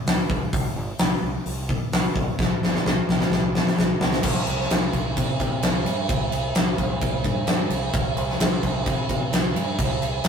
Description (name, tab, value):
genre	hard rock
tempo	130 BPM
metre	4/4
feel	straight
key	unclear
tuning	A4 = 440 Hz
part	growling fingered electric bass	bass	0.1-10.3 s	G1 to C3	-29 LUFS	right 1 dB	overdrive
part	huge arena drum kit	drums	0.1-10.3 s	crash cymbal, hi-hat, kick drum, snare drum	-21 LUFS	equal	none
room	light reverb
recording	rough rehearsal-room recording, warm saturation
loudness	-20 LUFS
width	side -7 dB against mid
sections	0.0-4.2 A section; 4.2-10.3 B section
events	drum fill 2.4-4.2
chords	none